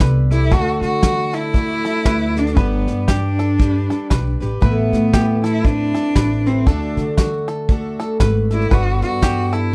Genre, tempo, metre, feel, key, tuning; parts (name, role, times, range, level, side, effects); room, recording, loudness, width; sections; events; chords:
acoustic folk duo or small band; 117 BPM; 4/4; swing 60% on 8ths; A4 = 442 Hz
picked twelve-string acoustic guitar; accompaniment; 0.0-9.7 s; A2 to B4; -25 LUFS; equal
bluegrass banjo; arpeggios; 0.0-9.7 s; F#4 to B4; -32 LUFS; equal
upright bass; bass; 0.0-9.7 s; G1 to D3; -22 LUFS; equal
soft brush drum kit; drums; 0.0-9.6 s; kick drum, snare drum; -20 LUFS; equal
rich cello; melody; 0.3-9.7 s; B3 to F#4; -23 LUFS; equal
light reverb; dark, warm production; -18 LUFS; mono
0.0-9.7 A section
0.0 Gadd9; 0.5 D; 2.6 G; 4.6 Amadd9; 6.7 D; 8.7 Gadd9